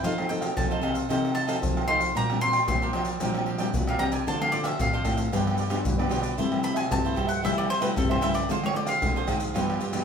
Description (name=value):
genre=samba and choro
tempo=113 BPM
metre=4/4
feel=straight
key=unclear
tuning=A4 = 445 Hz
part: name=bowl-back mandolin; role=second line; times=0.0-10.0 s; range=A4 to C6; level=-28 LUFS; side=left 1 dB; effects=none
part: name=cavaquinho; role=accompaniment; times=0.0-10.0 s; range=D4 to G5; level=-32 LUFS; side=right 6 dB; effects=none
part: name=nylon-string guitar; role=accompaniment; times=0.0-10.0 s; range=G2 to A4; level=-31 LUFS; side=left 1 dB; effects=none
part: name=nylon-string guitar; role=bass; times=0.0-10.0 s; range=G2 to G3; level=-31 LUFS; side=left 1 dB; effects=none
part: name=maracas, surdo, pandeiro and tamborim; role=percussion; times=0.0-10.0 s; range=none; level=-29 LUFS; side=equal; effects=none
room=wet studio ambience, RT60 0.5 s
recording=band playing live in one room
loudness=-23 LUFS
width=side -7 dB against mid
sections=0.0-10.0 A section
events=mandolin solo 0.0-10.0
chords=0.0 F7; 2.1 Bb69; 4.3 Dm7; 5.3 G7; 6.4 C6; 8.5 Dm7b5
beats=| 0.03 0.56 1.09 1.62 | 2.15 2.68 3.21 3.74 | 4.27 4.79 5.32 5.85 | 6.38 6.91 7.44 7.97 | 8.50 9.03 9.56